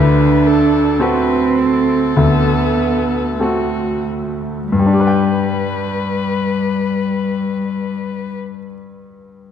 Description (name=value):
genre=classical, slow romantic movement for piano trio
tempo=44-56 BPM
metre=4/4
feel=rubato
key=G major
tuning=A4 = 440 Hz
part: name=muted violin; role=melody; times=0.0-8.4 s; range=F#4 to B4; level=-22 LUFS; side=left 7 dB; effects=none
part: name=muted cello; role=second line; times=0.0-8.4 s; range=G3 to D4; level=-18 LUFS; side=right 3 dB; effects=none
part: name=bright grand piano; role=accompaniment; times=0.0-9.5 s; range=D2 to G5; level=-17 LUFS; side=left 2 dB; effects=none
room=moderate scoring stage reverb, RT60 2.1 s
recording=dark, warm production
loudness=-14 LUFS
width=side -8 dB against mid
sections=0.0-4.7 A section; 4.7-9.5 B section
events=slowing down 0.0-4.7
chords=0.0 D7; 4.7 G